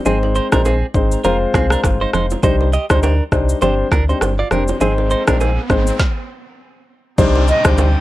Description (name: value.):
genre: afrobeats.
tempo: 101 BPM.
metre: 4/4.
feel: swing 58% on 16ths.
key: C minor.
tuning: A4 = 441 Hz.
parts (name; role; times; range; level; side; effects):
dark grand piano; accompaniment; 0.1-7.9 s; G3 to C5; -18 LUFS; left 2 dB; none.
direct-recorded clean electric guitar; riff; 0.1-5.6 s; C4 to Eb5; -23 LUFS; right 4 dB; digital delay.
sub bass with octave; bass; 0.1-8.0 s; F1 to D2; -18 LUFS; equal; none.
afro-pop drum kit; drums; 0.1-7.9 s; kick drum, rim click, shaker, snare drum; -17 LUFS; equal; none.
congas and bongos; percussion; 0.1-7.9 s; none; -25 LUFS; right 5 dB; none.
riser and downlifter; sound effects; 4.4-8.0 s; none; -28 LUFS; right 1 dB; none.
pipe organ, plenum; sustained chords; 7.2-8.0 s; C3 to G4; -25 LUFS; equal; none.
silver concert flute; melody; 7.5-7.6 s; Eb5; -16 LUFS; right 1 dB; none.
room: light reverb.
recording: worn, warbling old tape, cassette tape, warbly pitch drift.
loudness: -13 LUFS.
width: side -16 dB against mid.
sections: 0.0-7.2 A section.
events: riser 4.4-7.2; stop 6.0-7.2.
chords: 0.1 Ab; 1.2 Fm; 2.4 Cmadd9; 3.6 Gsus4; 4.8 Ab; 6.0 N.C.; 7.2 Cmadd9.